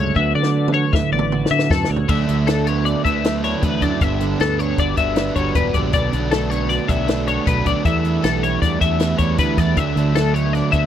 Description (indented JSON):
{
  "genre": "math rock and midwest emo",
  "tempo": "156 BPM",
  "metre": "5/4",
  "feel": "straight",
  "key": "D major",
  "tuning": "A4 = 437 Hz",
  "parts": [
    { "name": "twelve-string electric guitar", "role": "accompaniment", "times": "0.0-10.9 s", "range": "D2 to F#4", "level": "-22 LUFS", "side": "right 6 dB", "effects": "none" },
    { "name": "twelve-string electric guitar", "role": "arpeggios", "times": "0.0-10.9 s", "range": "A4 to E5", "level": "-22 LUFS", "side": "left 9 dB", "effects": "analog chorus" },
    { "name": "growling fingered electric bass", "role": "bass", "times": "0.0-10.9 s", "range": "E1 to D3", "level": "-23 LUFS", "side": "equal", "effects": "overdrive" },
    { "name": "compact cocktail drum kit", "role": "drums", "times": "0.2-10.8 s", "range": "crash cymbal, hi-hat, kick drum, snare drum, toms", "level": "-22 LUFS", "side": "left 1 dB", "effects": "none" },
    { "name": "overdriven electric guitar", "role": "riff", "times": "2.1-10.9 s", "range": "G2 to E4", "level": "-25 LUFS", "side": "right 2 dB", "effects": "none" }
  ],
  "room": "little or no reverb",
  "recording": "dry, close 1970s-style studio recording",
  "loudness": "-16 LUFS",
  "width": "side -10 dB against mid",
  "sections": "0.0-2.1 A section; 2.1-10.9 B section",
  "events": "drum fill 0.2-2.1",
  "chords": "0.2 D6; 2.1 D69; 4.0 G6; 5.9 Bm7; 7.9 Em7; 9.8 D69",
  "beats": "| 0.15 0.54 0.93 1.31 1.70 | 2.08 2.47 2.86 3.24 3.63 | 4.01 4.40 4.78 5.17 5.55 | 5.94 6.32 6.71 7.09 7.47 | 7.86 8.24 8.62 9.00 9.39 | 9.77 10.15 10.54"
}